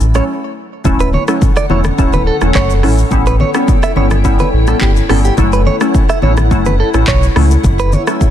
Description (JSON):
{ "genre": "afrobeats", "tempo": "106 BPM", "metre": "4/4", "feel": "straight", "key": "unclear", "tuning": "A4 = 440 Hz", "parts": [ { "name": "glassy wavetable pluck", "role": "accompaniment", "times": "0.0-8.2 s", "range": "F#3 to E4", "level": "-17 LUFS", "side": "left 2 dB", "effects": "chorus" }, { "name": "sub bass with octave", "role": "bass", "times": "0.0-8.0 s", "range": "D1 to C#2", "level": "-13 LUFS", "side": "equal", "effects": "none" }, { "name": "afro-pop drum kit", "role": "drums", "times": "0.0-8.3 s", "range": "handclaps, hi-hat, kick drum, rim click, shaker", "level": "-15 LUFS", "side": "equal", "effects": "vintage 12-bit sampler grit" }, { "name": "direct-recorded clean electric guitar", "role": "riff", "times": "0.2-8.0 s", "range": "G4 to E5", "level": "-20 LUFS", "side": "right 6 dB", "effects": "ping-pong delay" }, { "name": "congas", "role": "percussion", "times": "0.8-8.3 s", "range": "none", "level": "-21 LUFS", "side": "left 2 dB", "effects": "none" }, { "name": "glassy FM pad", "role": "sustained chords", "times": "1.2-8.3 s", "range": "D3 to G5", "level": "-20 LUFS", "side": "left 2 dB", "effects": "ensemble chorus, built-in reverb" } ], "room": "little or no reverb", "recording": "dense, heavily limited modern master", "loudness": "-10 LUFS", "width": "side -10 dB against mid", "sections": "0.0-8.3 A section", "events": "break 0.3-0.9", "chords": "0.0 F#m7; 0.9 Dmaj7; 3.1 A7; 5.4 F#m7" }